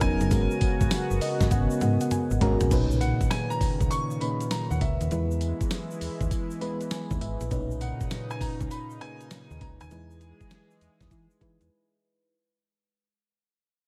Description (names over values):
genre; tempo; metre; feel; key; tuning
R&B, new jack swing; 100 BPM; 4/4; swing 65% on 16ths; unclear; A4 = 440 Hz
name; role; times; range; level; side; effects
warm baby grand piano; melody; 0.0-11.7 s; E5 to C#6; -38 LUFS; equal; tape echo
FM electric piano; accompaniment; 0.0-12.3 s; A#2 to B5; -33 LUFS; equal; none
chorused pulse-width pad; sustained chords; 0.0-12.3 s; A#2 to A#4; -35 LUFS; equal; none
slap-like FM bass; bass; 0.0-11.7 s; E1 to E3; -30 LUFS; equal; none
dusty soul sampler-style drum kit; drums; 0.0-11.7 s; crash cymbal, hi-hat, kick drum, snare drum, tambourine, toms; -31 LUFS; equal; none
egg shaker; percussion; 0.0-11.7 s; none; -50 LUFS; equal; none
room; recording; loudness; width
moderate plate reverb, RT60 3.0 s; dreamy mix soaked in reverb; -27 LUFS; mono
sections
0.0-2.7 A section; 2.7-12.3 B section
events
FM electric piano fill 0.9-2.7, 6.3-7.5; drum fill 1.5-2.7; fade-out 2.7-12.3; break 11.7-12.3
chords
0.3 G#m11; 2.7 Bmaj9; 5.1 E; 7.5 Bmaj9; 9.9 Emaj7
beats
| 0.31 0.91 1.51 2.11 | 2.71 3.31 3.91 4.51 | 5.11 5.71 6.31 6.91 | 7.51 8.11 8.71 9.31 | 9.91 10.51 11.11 11.71